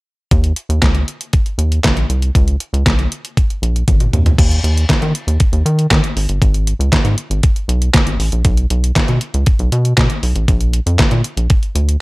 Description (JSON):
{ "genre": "early-eighties boogie funk", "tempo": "118 BPM", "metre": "4/4", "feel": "straight", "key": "unclear", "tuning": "A4 = 439 Hz", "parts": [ { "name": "rubbery square bass", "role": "bass", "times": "0.3-12.0 s", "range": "G1 to Eb3", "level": "-15 LUFS", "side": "equal", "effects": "none" }, { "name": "detuned 8-bit digital drum machine", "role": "drums", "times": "0.3-12.0 s", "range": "crash cymbal, handclaps, hi-hat, kick drum, snare drum, toms", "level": "-14 LUFS", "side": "equal", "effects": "overdrive, gated reverb" } ], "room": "little or no reverb", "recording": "none", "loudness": "-12 LUFS", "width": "side -23 dB against mid", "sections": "0.3-4.4 A section; 4.4-12.0 B section", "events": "drum fill 3.9-4.4", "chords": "none" }